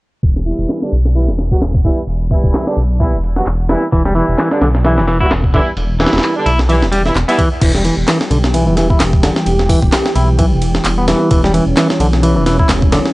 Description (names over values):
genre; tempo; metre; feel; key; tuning
breakbeat, breaks; 130 BPM; 4/4; swing 57% on 16ths; E dorian; A4 = 440 Hz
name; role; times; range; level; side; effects
dark detuned saw bass; bass; 0.2-13.0 s; E1 to B1; -15 LUFS; equal; none
breakbeat sampler-style drum kit; drums; 0.2-13.1 s; crash cymbal, hi-hat, kick drum, ride cymbal, snare drum; -16 LUFS; equal; none
mellow horn section; stabs; 0.5-7.4 s; D3 to F#4; -18 LUFS; right 1 dB; vintage 12-bit sampler grit, low-pass filter, analog delay
electronic handclaps; drums; 0.7-12.8 s; none; -20 LUFS; equal; none
semi-hollow electric guitar; riff; 3.9-13.0 s; D3 to E4; -16 LUFS; equal; low-pass filter, analog delay
lush unison pad; sustained chords; 7.6-13.1 s; E3 to G4; -18 LUFS; equal; chorus, sidechain pumping
room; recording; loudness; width
little or no reverb; dry, gritty hardware recording, vinyl crackle, low-pass filter, nothing above 10.6 kHz; -11 LUFS; side -20 dB against mid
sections
0.2-7.6 A section; 7.6-13.1 B section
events
filter sweep on detuned saw bass 0.2-7.6; filter sweep on horn section 0.2-7.6; filter sweep 0.2-7.6; filter sweep on clean electric guitar 7.6-13.1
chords
0.2 Em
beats
| 0.23 0.69 1.16 1.62 | 2.08 2.54 3.00 3.46 | 3.92 4.39 4.85 5.31 | 5.77 6.23 6.69 7.16 | 7.62 8.08 8.54 9.00 | 9.46 9.93 10.39 10.85 | 11.31 11.77 12.23 12.69